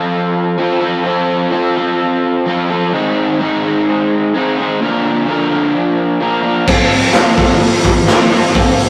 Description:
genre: garage rock duo or trio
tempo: 128 BPM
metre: 4/4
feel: straight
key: F major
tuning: A4 = 440 Hz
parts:
  - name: crunchy overdriven guitar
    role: riff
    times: 0.0-8.9 s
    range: Ab2 to Bb4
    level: -16 LUFS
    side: equal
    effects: none
  - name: raw garage drum kit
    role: drums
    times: 6.7-8.9 s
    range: crash cymbal, hi-hat, kick drum, snare drum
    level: -12 LUFS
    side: equal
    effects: none
  - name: group handclap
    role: percussion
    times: 7.1-8.2 s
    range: none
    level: -22 LUFS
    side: equal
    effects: none
room: moderate studio reverb, RT60 0.6 s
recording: rough rehearsal-room recording, warm saturation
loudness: -14 LUFS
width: mono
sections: 0.0-8.9 A section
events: none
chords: 0.0 F; 2.9 Ab; 4.8 Bb; 6.7 F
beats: 0.13 0.59 | 1.06 1.53 2.00 2.46 | 2.93 3.40 3.87 4.34 | 4.80 5.27 5.74 6.21 | 6.68 7.15 7.62 8.09 | 8.55

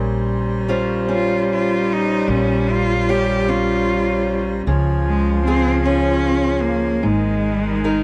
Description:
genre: acoustic folk-pop ballad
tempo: 50 BPM (dotted quarters)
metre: 6/8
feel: straight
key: unclear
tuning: A4 = 440 Hz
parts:
  - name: warm viola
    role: second line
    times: 0.0-8.0 s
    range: Eb3 to G3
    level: -24 LUFS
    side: equal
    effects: none
  - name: fingerpicked steel-string acoustic guitar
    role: accompaniment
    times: 0.0-8.0 s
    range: Ab2 to C5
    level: -25 LUFS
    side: equal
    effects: none
  - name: hand-pumped harmonium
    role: sustained chords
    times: 0.0-8.0 s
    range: Db4 to Bb5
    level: -32 LUFS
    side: equal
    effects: none
  - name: upright bass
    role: bass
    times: 0.0-8.0 s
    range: Ab1 to Db2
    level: -26 LUFS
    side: equal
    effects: none
  - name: clear cello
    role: melody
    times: 1.1-8.0 s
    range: Ab3 to G4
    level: -23 LUFS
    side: equal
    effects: tape echo
room: small room ambience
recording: dry, close 1970s-style studio recording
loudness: -19 LUFS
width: mono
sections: 0.0-8.0 A section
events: none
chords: 0.0 Bbmadd9; 4.7 Db; 7.0 Absus2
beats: 1.09 | 2.28 3.47 | 4.66 5.84 | 7.03

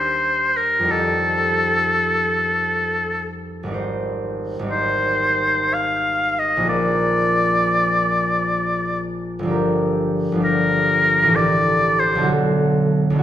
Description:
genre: classical, impressionist duo for oboe and harp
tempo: 64 BPM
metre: 3/4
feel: rubato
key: unclear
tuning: A4 = 440 Hz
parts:
  - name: clear oboe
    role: melody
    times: 0.0-12.3 s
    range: A4 to F5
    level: -18 LUFS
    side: left 1 dB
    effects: none
  - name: concert harp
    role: accompaniment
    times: 0.0-13.2 s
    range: G1 to C5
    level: -21 LUFS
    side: equal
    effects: none
room: wet recital hall reverb, RT60 1.6 s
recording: minimal, uncompressed stereo recording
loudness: -17 LUFS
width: side -11 dB against mid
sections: 0.0-13.2 A section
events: none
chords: 0.0 Ebmaj7; 0.9 F9; 3.8 Abmaj7; 6.7 Bb9; 9.5 Gm7; 11.4 A5; 12.3 Bm7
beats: | 0.92 1.89 2.84 | 3.77 4.73 5.75 | 6.71 7.64 8.58 | 9.54 10.46 11.37 | 12.30 13.23

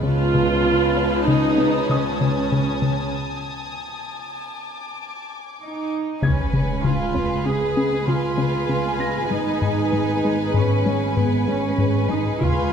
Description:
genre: cinematic, suspense film score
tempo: 97 BPM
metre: 5/4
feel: straight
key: G# dorian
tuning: A4 = 440 Hz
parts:
  - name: warm symphonic violin section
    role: melody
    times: 0.0-12.7 s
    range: B4 to G#5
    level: -30 LUFS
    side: left 1 dB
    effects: none
  - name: dark symphonic viola section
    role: accompaniment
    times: 0.0-12.7 s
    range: G#3 to E#4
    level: -26 LUFS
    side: right 1 dB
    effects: none
  - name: deep dark ambient pad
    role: sustained chords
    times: 0.0-12.7 s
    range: E#4 to G#5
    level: -31 LUFS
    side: left 2 dB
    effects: chorus, built-in reverb
  - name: plucky analog bass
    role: riff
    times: 0.0-12.6 s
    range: G#2 to C#4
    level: -23 LUFS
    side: left 3 dB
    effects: none
  - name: warm studio double bass section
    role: bass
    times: 0.0-12.7 s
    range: G#1 to C#2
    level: -28 LUFS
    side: right 4 dB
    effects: none
  - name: warm symphonic cello section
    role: bass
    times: 0.0-12.7 s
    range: C#3 to G#4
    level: -25 LUFS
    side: right 2 dB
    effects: none
  - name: bright grand piano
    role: texture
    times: 0.0-12.4 s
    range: D#5 to A#6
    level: -34 LUFS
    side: left 2 dB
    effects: none
  - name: warm chamber violin section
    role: texture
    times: 0.0-5.9, 12.4-12.7 s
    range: G#5 to G#6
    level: -32 LUFS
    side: left 3 dB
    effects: none
  - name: clear studio violin section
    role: second line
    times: 6.2-12.7 s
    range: B4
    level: -30 LUFS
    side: left 1 dB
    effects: none
  - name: taiko ensemble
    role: drums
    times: 6.2-7.4, 12.4-12.7 s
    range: none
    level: -28 LUFS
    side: right 1 dB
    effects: none
  - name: sub drop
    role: sound effects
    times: 6.2-9.3 s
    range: none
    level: -29 LUFS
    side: equal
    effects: none
room: wet concert hall reverb, RT60 2.3 s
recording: minimal, uncompressed stereo recording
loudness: -18 LUFS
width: side -7 dB against mid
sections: 0.0-6.2 A section; 6.2-12.7 A section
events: break 3.1-6.2; impact 6.2-9.3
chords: 0.0 C#7; 3.1 G#5; 6.2 C#7; 9.3 G#m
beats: | 0.04 0.66 1.28 1.90 2.52 | 3.13 3.75 4.37 4.99 5.61 | 6.23 6.84 7.46 8.08 8.70 | 9.32 9.94 10.56 11.18 11.79 | 12.41

